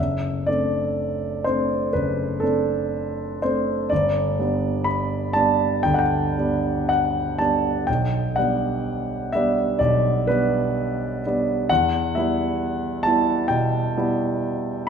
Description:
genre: classical, romantic nocturne for solo piano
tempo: 57-68 BPM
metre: 4/4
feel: rubato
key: G major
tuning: A4 = 440 Hz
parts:
  - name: warm concert grand piano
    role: solo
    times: 0.0-14.9 s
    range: F#1 to B5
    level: -20 LUFS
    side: equal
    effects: none
room: wet recital hall reverb, RT60 1.9 s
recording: minimal, uncompressed stereo recording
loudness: -20 LUFS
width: side -7 dB against mid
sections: 0.0-14.9 A section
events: none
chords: 0.0 D7/F#; 3.9 G; 7.9 G/B; 11.7 Em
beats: 0.98 1.93 2.92 | 3.91 4.85 5.85 6.89 | 7.88 8.85 9.80 10.77 | 11.70 12.59 13.49 14.41

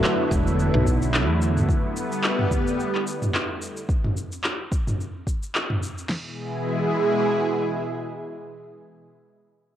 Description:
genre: sunset chillout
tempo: 109 BPM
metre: 4/4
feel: swing 55% on 16ths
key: E mixolydian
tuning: A4 = 440 Hz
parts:
  - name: lush unison pad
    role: sustained chords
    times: 0.0-9.1 s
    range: B2 to G#4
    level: -24 LUFS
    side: equal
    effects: chorus, phaser, cassette tape
  - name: deep house drum kit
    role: drums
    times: 0.0-6.1 s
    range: handclaps, shaker, toms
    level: -26 LUFS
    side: equal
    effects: overdrive, cassette tape
  - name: woody fretless electric bass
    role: bass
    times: 0.3-1.6 s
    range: E1 to E2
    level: -22 LUFS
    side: equal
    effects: tube saturation
  - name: deep house drum kit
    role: drums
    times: 0.3-6.2 s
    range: crash cymbal, kick drum, snare drum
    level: -25 LUFS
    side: equal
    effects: cassette tape
room: wet spring reverb, RT60 2.7 s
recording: home recording on cassette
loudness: -22 LUFS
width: side -11 dB against mid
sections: 0.0-6.1 A section; 6.1-8.3 B section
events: none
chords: 0.0 E9sus4; 1.7 A9sus4; 6.1 E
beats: 0.04 0.58 1.14 | 1.69 2.24 2.79 3.34 | 3.89 4.44 4.99 5.54 | 6.09 6.64 7.19 7.74

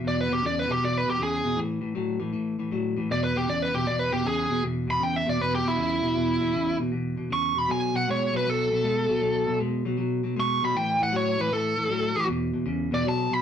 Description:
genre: blues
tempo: 157 BPM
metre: 4/4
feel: swing 66% on 8ths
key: E mixolydian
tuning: A4 = 440 Hz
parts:
  - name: clean electric guitar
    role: riff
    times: 0.0-13.4 s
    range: E2 to G#3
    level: -27 LUFS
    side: left 1 dB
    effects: none
  - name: biting lead guitar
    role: melody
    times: 0.1-13.4 s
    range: E4 to C#6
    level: -25 LUFS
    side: right 1 dB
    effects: overdrive
room: moderate studio reverb, RT60 0.6 s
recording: rough rehearsal-room recording, tube saturation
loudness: -23 LUFS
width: side -8 dB against mid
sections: 0.0-13.4 A section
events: lead electric guitar solo 0.0-13.4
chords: 0.0 E; 1.6 A5; 3.1 E5; 7.7 B5; 10.7 A5; 12.3 E5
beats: | 0.04 0.42 0.80 1.18 | 1.56 1.95 2.33 2.71 | 3.09 3.47 3.85 4.24 | 4.62 5.00 5.38 5.76 | 6.15 6.53 6.91 7.30 | 7.68 8.06 8.45 8.83 | 9.21 9.60 9.98 10.36 | 10.74 11.12 11.51 11.89 | 12.27 12.65 13.04

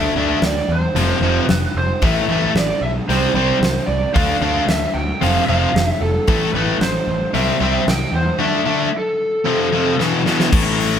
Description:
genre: hard rock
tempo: 113 BPM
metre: 4/4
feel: straight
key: A minor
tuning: A4 = 440 Hz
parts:
  - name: lead guitar through a small cranked amp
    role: melody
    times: 0.0-10.0 s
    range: A4 to G5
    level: -21 LUFS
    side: equal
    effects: overdrive
  - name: distorted electric guitar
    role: riff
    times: 0.0-10.5 s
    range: E2 to D4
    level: -23 LUFS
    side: right 6 dB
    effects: overdrive
  - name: scooped high-gain guitar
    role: riff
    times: 0.0-11.0 s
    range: E2 to D4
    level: -20 LUFS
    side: left 8 dB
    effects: distortion
  - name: fuzz picked electric bass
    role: bass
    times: 0.0-11.0 s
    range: F1 to E2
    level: -21 LUFS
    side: equal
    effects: overdrive
  - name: huge arena drum kit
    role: drums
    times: 0.4-10.9 s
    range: crash cymbal, hi-hat, kick drum, snare drum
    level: -22 LUFS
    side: equal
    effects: none
room: moderate stone room reverb, RT60 1.1 s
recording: band playing live in one room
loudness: -15 LUFS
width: side -8 dB against mid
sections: 0.0-10.5 A section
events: drum fill 10.0-10.5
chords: 0.0 Dsus2; 1.0 F5; 2.0 Asus2; 3.1 C5; 4.2 D5; 5.2 F5; 6.3 Am; 7.3 C; 8.4 D5; 9.5 F; 10.0 E5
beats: 0.44 0.97 1.50 | 2.03 2.56 3.09 3.62 | 4.15 4.68 5.21 5.74 | 6.27 6.80 7.34 7.87 | 8.40 8.93 9.46 9.99 | 10.52

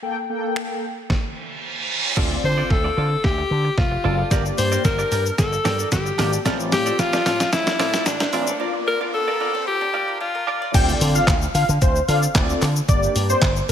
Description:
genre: dance-pop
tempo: 112 BPM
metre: 4/4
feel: straight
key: D minor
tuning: A4 = 439 Hz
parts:
  - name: mellow synth brass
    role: accompaniment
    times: 0.0-13.4 s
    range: Bb3 to G5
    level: -27 LUFS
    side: left 1 dB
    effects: chorus, sidechain pumping, slapback echo
  - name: detuned 8-bit digital drum machine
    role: drums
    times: 0.6-13.7 s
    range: crash cymbal, finger snaps, handclaps, hi-hat, kick drum, shaker, snare drum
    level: -22 LUFS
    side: equal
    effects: none
  - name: reverse cymbal, riser and impact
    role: sound effects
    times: 1.4-12.9 s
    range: none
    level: -31 LUFS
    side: right 2 dB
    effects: none
  - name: direct-recorded clean electric guitar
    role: riff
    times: 2.2-10.8 s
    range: C4 to D5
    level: -29 LUFS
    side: right 8 dB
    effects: lush chorus, slapback echo
  - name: slap bass with an envelope filter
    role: bass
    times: 2.2-13.7 s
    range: F1 to D3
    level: -23 LUFS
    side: equal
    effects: sidechain pumping
  - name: edgy alto saxophone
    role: melody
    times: 2.4-10.7 s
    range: D4 to C5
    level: -22 LUFS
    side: left 2 dB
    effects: slapback echo, digital delay
  - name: flamenco guitar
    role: arpeggios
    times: 6.5-10.7 s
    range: F3 to D5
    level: -34 LUFS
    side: left 6 dB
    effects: sidechain pumping, slapback echo, digital delay
  - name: wide unison lead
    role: melody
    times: 10.7-13.7 s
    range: C5 to G5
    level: -22 LUFS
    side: left 1 dB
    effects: sidechain pumping, slapback echo, digital delay
room: light reverb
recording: high-pass filter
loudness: -18 LUFS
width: side -9 dB against mid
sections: 0.0-2.2 A section; 2.2-10.7 B section; 10.7-13.7 C section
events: reverse cymbal 1.4-2.2; build-up 2.2-10.7; drum fill 2.2-8.6; impact 2.2-4.3, 10.7-12.9; filter sweep 2.2-10.7; break 8.6-10.7; drop 10.7-13.7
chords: 0.0 Gmadd9; 1.1 N.C.; 2.2 Dm7; 4.3 Gm; 6.5 Dm7/A; 8.6 Bb; 10.7 Dm7; 12.9 Gm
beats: | 0.03 0.56 1.10 1.64 | 2.17 2.71 3.24 3.78 | 4.31 4.85 5.38 5.92 | 6.46 6.99 7.53 8.06 | 8.60 9.13 9.67 10.21 | 10.74 11.28 11.81 12.35 | 12.88 13.42

